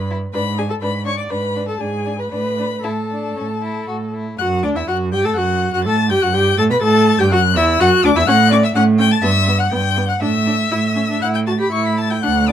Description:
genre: quick classical-period movement for string quartet.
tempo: 114-127 BPM.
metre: 4/4.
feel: rubato.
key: D major.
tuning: A4 = 438 Hz.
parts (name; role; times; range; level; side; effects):
rich violin; melody; 0.0-12.5 s; G#5 to C#7; -22 LUFS; left 10 dB; none.
clear viola; accompaniment; 0.0-12.5 s; B3 to D5; -20 LUFS; equal; none.
rich cello; bass; 0.0-12.5 s; D2 to B2; -18 LUFS; right 3 dB; none.
clear violin; second line; 0.1-12.5 s; C#4 to C#6; -22 LUFS; left 3 dB; none.
room: light reverb.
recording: dark, warm production.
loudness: -14 LUFS.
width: side -10 dB against mid.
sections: 0.0-4.4 A section; 4.4-12.5 B section.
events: none.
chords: 0.3 G#dim; 2.3 D5/A; 3.4 A5; 4.4 D; 6.3 Gadd9; 7.3 Dadd9; 8.3 A6; 9.2 G6; 10.2 Asus4; 11.2 A5.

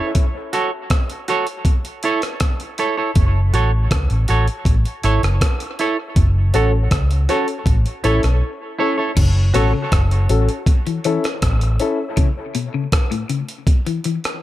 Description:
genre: dub reggae.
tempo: 80 BPM.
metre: 4/4.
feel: straight.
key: unclear.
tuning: A4 = 439 Hz.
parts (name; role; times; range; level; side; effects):
semi-hollow electric guitar; accompaniment; 0.0-9.7 s; E4 to C#5; -22 LUFS; right 4 dB; wide subtle chorus, dub echo.
breakbeat sampler-style drum kit; drums; 0.1-14.4 s; crash cymbal, hi-hat, kick drum, rim click; -18 LUFS; equal; none.
vintage muted fingered electric bass; bass; 3.2-11.8 s; F#1 to C#2; -16 LUFS; equal; none.
dark upright piano; stabs; 6.5-12.0 s; C#4 to A4; -24 LUFS; left 4 dB; dub echo.
clean electric guitar; arpeggios; 9.2-14.2 s; A2 to E3; -24 LUFS; left 6 dB; dub echo.
room: light reverb.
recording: none.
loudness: -16 LUFS.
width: side -14 dB against mid.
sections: 0.0-9.2 A section; 9.2-14.4 B section.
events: break 8.4-9.2, 12.2-14.4.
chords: 0.2 F#m; 1.7 A; 3.2 F#m; 4.7 A; 6.2 F#m; 7.7 A; 9.2 F#m; 10.7 A; 12.2 Aadd9; 13.7 N.C..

